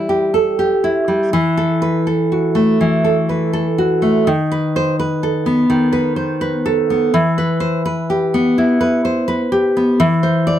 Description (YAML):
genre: romantic piece for solo classical guitar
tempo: 83 BPM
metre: 4/4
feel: rubato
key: E minor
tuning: A4 = 439 Hz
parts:
  - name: nylon-string guitar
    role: solo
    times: 0.0-10.6 s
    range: D#3 to D5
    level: -14 LUFS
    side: equal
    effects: none
room: moderate small room reverb, RT60 0.5 s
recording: dry, close 1970s-style studio recording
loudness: -14 LUFS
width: side -11 dB against mid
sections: 0.0-10.6 A section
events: none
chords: 0.0 Em; 1.3 Esus24; 4.3 B7/D#; 7.1 Em; 10.0 Am/E (rootless)